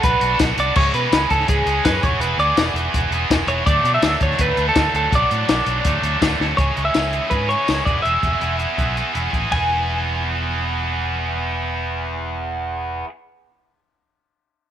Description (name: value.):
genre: indie rock.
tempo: 165 BPM.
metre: 4/4.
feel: straight.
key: E mixolydian.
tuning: A4 = 440 Hz.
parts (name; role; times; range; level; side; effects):
twelve-string electric guitar; melody; 0.0-13.0 s; G#4 to G#5; -21 LUFS; equal; none.
scooped high-gain guitar; riff; 0.0-13.1 s; E3 to G#4; -22 LUFS; right 2 dB; distortion.
fingered electric bass; bass; 0.0-13.0 s; E1 to B2; -25 LUFS; equal; none.
compact cocktail drum kit; drums; 0.0-9.6 s; crash cymbal, hi-hat, kick drum, ride cymbal, snare drum, tambourine; -21 LUFS; left 2 dB; none.
room: light reverb.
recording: 1960s-style stereo.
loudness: -17 LUFS.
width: side -10 dB against mid.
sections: 0.0-6.6 A section; 6.6-9.5 B section; 9.5-12.5 C section.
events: drum fill 6.4.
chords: 0.0 Bm; 0.8 C#m; 2.0 E7; 3.7 D; 5.1 Bm; 5.8 D; 6.6 C#m; 7.9 E.